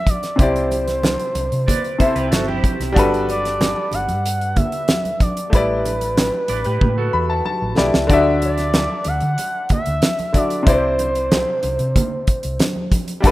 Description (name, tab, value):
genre	lush 1970s-style soul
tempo	93 BPM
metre	4/4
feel	straight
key	unclear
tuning	A4 = 440 Hz
part	expressive portamento lead	melody	0.0-12.9 s	B4 to F#5	-23 LUFS	right 1 dB	chorus
part	clear baby grand piano	accompaniment	0.0-13.3 s	C3 to B5	-21 LUFS	left 2 dB	none
part	damped 70s drum kit	drums	0.1-13.3 s	hi-hat, kick drum, snare drum	-18 LUFS	equal	none
part	congas	percussion	0.1-13.3 s	none	-27 LUFS	right 2 dB	none
part	hollow-body short-scale fingered electric bass	bass	0.4-13.3 s	G1 to D3	-24 LUFS	equal	none
part	electric guitar through a small old amp	riff	1.7-7.9 s	E4 to D5	-27 LUFS	right 4 dB	wide subtle chorus
room	light reverb, studio reverb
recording	rough home demo mix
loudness	-16 LUFS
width	side -17 dB against mid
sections	0.0-13.3 A section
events	drum fill 6.8-8.1; grand piano fill 6.8-8.1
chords	0.4 Cmaj9; 3.0 Gmaj7; 5.5 A9sus4; 8.1 D; 10.7 Cadd9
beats	| 0.39 1.03 1.68 2.32 | 2.96 3.60 4.25 4.89 | 5.53 6.17 6.81 7.46 | 8.10 8.74 9.38 10.03 | 10.67 11.31 11.95 12.60 | 13.24